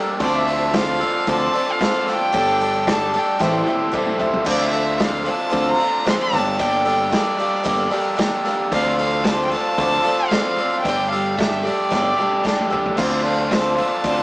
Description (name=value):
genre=folk rock and heartland rock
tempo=113 BPM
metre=4/4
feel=straight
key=D minor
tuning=A4 = 440 Hz
part: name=picked twelve-string acoustic guitar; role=accompaniment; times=0.0-14.2 s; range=G2 to A4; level=-22 LUFS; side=equal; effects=none
part: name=mellow tonewheel organ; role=sustained chords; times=0.0-4.5, 13.0-14.2 s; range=F4 to D6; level=-31 LUFS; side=equal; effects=none
part: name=overdriven electric guitar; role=riff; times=0.0-14.2 s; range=G2 to Bb4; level=-23 LUFS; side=equal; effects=none
part: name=rich fiddle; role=melody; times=0.2-14.2 s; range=D5 to C6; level=-23 LUFS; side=equal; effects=none
part: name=picked electric bass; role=bass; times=0.2-14.2 s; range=G1 to D2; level=-26 LUFS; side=equal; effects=none
part: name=vintage drum kit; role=drums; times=0.2-14.2 s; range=crash cymbal, hi-hat, kick drum, snare drum, toms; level=-25 LUFS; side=equal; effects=none
room=wet stone room reverb, RT60 1.1 s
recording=rough rehearsal-room recording, small speaker sound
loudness=-17 LUFS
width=side -22 dB against mid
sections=0.0-4.5 A section; 4.5-14.2 A section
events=drum fill 3.4-4.5, 11.9-13.0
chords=0.2 Dm7; 2.3 Gsus2; 3.4 Am7; 4.5 Dm7; 6.3 Gmadd9; 8.7 Dm7; 10.9 Gsus2; 13.0 Dm7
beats=| 0.21 0.74 1.27 1.81 | 2.34 2.87 3.40 3.94 | 4.47 5.00 5.53 6.07 | 6.60 7.13 7.66 8.20 | 8.73 9.26 9.79 10.32 | 10.86 11.39 11.92 12.45 | 12.98 13.51 14.05